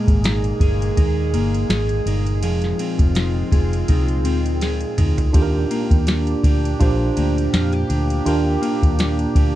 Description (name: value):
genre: indie pop, bedroom pop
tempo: 82 BPM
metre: 4/4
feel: swing 55% on 16ths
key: Eb major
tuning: A4 = 440 Hz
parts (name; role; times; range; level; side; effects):
- mellow electric guitar; accompaniment; 0.0-9.6 s; F3 to Ab4; -25 LUFS; left 3 dB; wide subtle chorus, vibrato effect, plate reverb
- warbly tape-like pad; sustained chords; 0.0-9.6 s; Bb2 to Ab4; -26 LUFS; right 2 dB; chorus, built-in reverb, phaser, plate reverb
- vintage muted fingered electric bass; bass; 0.1-9.6 s; F1 to F2; -21 LUFS; equal; none
- soft vintage rhythm box; drums; 0.1-9.5 s; kick drum, ride cymbal, snare drum, toms; -19 LUFS; equal; overdrive
- tine electric piano; accompaniment; 5.3-9.6 s; D4 to C5; -23 LUFS; right 4 dB; overdrive, fast stereo tremolo, plate reverb
room: light reverb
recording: dark, warm production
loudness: -16 LUFS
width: side -14 dB against mid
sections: 0.0-9.6 A section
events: drum fill 4.6-5.3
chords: 0.0 Absus2; 2.4 Fm7; 5.3 Ebmaj7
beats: 0.24 0.97 1.70 | 2.43 3.16 3.89 4.62 | 5.35 6.08 6.80 7.53 | 8.26 8.99